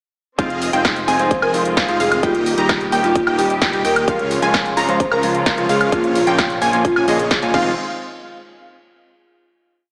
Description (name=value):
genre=EDM, festival progressive house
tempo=130 BPM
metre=4/4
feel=straight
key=F minor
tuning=A4 = 440 Hz
part: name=mellow electric guitar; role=accompaniment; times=0.4-7.7 s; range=Bb2 to Ab4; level=-26 LUFS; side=equal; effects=sidechain pumping, analog delay
part: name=rich symphonic string section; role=sustained chords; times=0.4-7.8 s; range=Db3 to G4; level=-30 LUFS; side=equal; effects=none
part: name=unison pluck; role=arpeggios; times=0.4-7.7 s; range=Eb5 to Bb5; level=-25 LUFS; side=equal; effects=sidechain pumping, analog delay
part: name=dense compressed supersaw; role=riff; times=0.4-7.7 s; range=Ab3 to Bb5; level=-26 LUFS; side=equal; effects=sidechain pumping, analog delay
part: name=fat analog bass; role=bass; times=0.4-7.8 s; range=Eb1 to Eb2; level=-29 LUFS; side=equal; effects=sidechain pumping
part: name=big-room dance drum kit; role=drums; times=0.4-7.6 s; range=crash cymbal, hi-hat, shaker, snare drum, woodblock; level=-24 LUFS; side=equal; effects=none
part: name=electronic kick drum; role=drums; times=0.4-7.6 s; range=none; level=-25 LUFS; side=equal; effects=none
part: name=marimba with soft mallets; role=melody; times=1.2-7.4 s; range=F4 to C5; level=-24 LUFS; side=equal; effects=analog delay
room=wet lush hall reverb, RT60 1.7 s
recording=dreamy mix soaked in reverb, small speaker sound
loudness=-17 LUFS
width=mono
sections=0.4-7.8 drop; 7.8-9.6 final hit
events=drop 0.4-7.8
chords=0.4 Fm7; 2.2 Eb; 4.1 Db; 5.9 Bbm; 7.5 Fm7; 7.8 N.C.